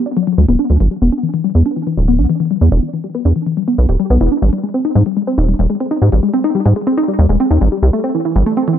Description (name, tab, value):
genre	IDM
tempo	141 BPM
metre	4/4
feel	straight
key	unclear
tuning	A4 = 440 Hz
part	warbly dusty pluck	arpeggios	0.0-8.8 s	E3 to B4	-15 LUFS	left 2 dB	chorus, analog delay
part	deep acid bass	bass	0.4-8.4 s	D1 to Ab2	-11 LUFS	right 1 dB	none
room	light reverb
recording	echo-heavy mix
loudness	-12 LUFS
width	side -10 dB against mid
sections	0.0-8.8 A section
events	none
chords	0.0 Gmaj7(no3); 1.0 Em7; 4.4 Abmaj7; 7.8 C6